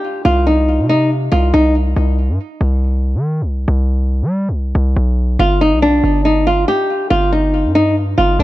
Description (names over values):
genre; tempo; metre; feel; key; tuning
hip hop, drill; 140 BPM; 4/4; half-time; C harmonic minor; A4 = 440 Hz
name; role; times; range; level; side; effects
flamenco guitar; melody; 0.0-1.7, 5.4-8.4 s; D4 to G4; -14 LUFS; equal; low-pass filter, ping-pong delay
hard-hitting 808-style bass; bass; 0.3-8.4 s; G1 to G3; -15 LUFS; equal; none
room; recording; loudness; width
little or no reverb; none; -12 LUFS; side -16 dB against mid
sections
0.0-8.4 A section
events
break 2.0-5.4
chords
none